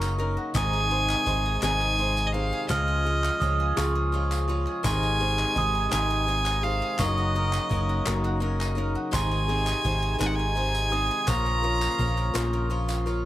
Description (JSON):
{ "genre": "indie folk with a building arrangement", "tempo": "56 BPM (dotted quarters)", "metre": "6/8", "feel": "straight", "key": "unclear", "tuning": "A4 = 440 Hz", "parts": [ { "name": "glockenspiel with rubber mallets", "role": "second line", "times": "0.0-13.0 s", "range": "C6 to F6", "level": "-31 LUFS", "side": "right 3 dB", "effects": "none" }, { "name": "picked swing-style acoustic guitar", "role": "accompaniment", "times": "0.0-13.3 s", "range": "Ab2 to Bb4", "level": "-33 LUFS", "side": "left 4 dB", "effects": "none" }, { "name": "pedal harmonium", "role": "sustained chords", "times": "0.0-13.3 s", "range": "C3 to F4", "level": "-35 LUFS", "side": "right 1 dB", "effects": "none" }, { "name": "bowl-back mandolin", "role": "arpeggios", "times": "0.0-13.3 s", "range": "Eb4 to F5", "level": "-36 LUFS", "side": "right 3 dB", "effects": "digital delay" }, { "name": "hollow-body short-scale fingered electric bass", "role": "bass", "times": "0.0-13.2 s", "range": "Gb1 to Db2", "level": "-27 LUFS", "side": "equal", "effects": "none" }, { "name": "group handclap", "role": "percussion", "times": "0.0-13.1 s", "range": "none", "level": "-37 LUFS", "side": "left 4 dB", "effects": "none" }, { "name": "tambourine", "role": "percussion", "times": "0.0-13.2 s", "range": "none", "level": "-41 LUFS", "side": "right 6 dB", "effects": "none" }, { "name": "cajon", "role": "drums", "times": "0.2-13.2 s", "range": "none", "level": "-35 LUFS", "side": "equal", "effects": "none" }, { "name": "clear fiddle", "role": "melody", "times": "0.6-12.7 s", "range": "Eb5 to Bb5", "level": "-28 LUFS", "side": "equal", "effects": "none" } ], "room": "small room ambience", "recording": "dark, warm production", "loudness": "-23 LUFS", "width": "side -14 dB against mid", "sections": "0.0-13.3 A section", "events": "none", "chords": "0.0 Gb6; 0.6 Ab; 2.7 Db; 4.9 Ab; 7.0 Gb6; 9.1 Ab; 11.3 Bbm", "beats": "| 0.55 1.63 | 2.70 3.78 | 4.85 5.92 | 7.00 8.07 | 9.14 10.21 | 11.28 12.36" }